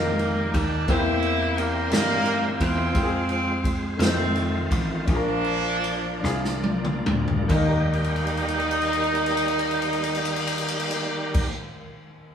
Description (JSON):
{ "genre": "slow gospel", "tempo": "45-58 BPM (dotted quarters)", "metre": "6/8", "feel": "straight", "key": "Eb major", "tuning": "A4 = 440 Hz", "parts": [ { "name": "clear horn section", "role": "melody", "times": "0.0-11.5 s", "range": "Eb3 to F4", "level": "-26 LUFS", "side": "right 1 dB", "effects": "none" }, { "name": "warm grand piano", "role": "accompaniment", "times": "0.0-12.3 s", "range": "Eb2 to D5", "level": "-30 LUFS", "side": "left 3 dB", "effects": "none" }, { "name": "bright tonewheel organ", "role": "sustained chords", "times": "0.0-11.5 s", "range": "Eb3 to E5", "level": "-29 LUFS", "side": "right 1 dB", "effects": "fast rotary speaker, overdrive, chorus vibrato" }, { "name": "dry thumbed slap bass", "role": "bass", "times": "0.0-11.5 s", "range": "A1 to G2", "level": "-28 LUFS", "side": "equal", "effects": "none" }, { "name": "swinging big-band drum kit", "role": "drums", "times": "0.2-11.6 s", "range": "crash cymbal, kick drum, ride cymbal, snare drum, toms", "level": "-27 LUFS", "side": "equal", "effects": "none" } ], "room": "moderate stone room reverb, RT60 1.0 s", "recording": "band playing live in one room, studio ambience", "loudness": "-21 LUFS", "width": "side -8 dB against mid", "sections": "0.0-7.5 A section; 7.5-12.3 B section", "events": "slowing down 2.9-7.5; drum fill 6.2-7.5, 7.9-11.3", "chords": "0.0 Eb; 0.9 C7/E; 2.9 Fm; 4.0 F7; 5.1 Bb; 7.5 Eb", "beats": "| 0.88 1.92 | 2.95 3.99 | 5.07 6.23 | 7.49 8.81 | 10.13 11.46" }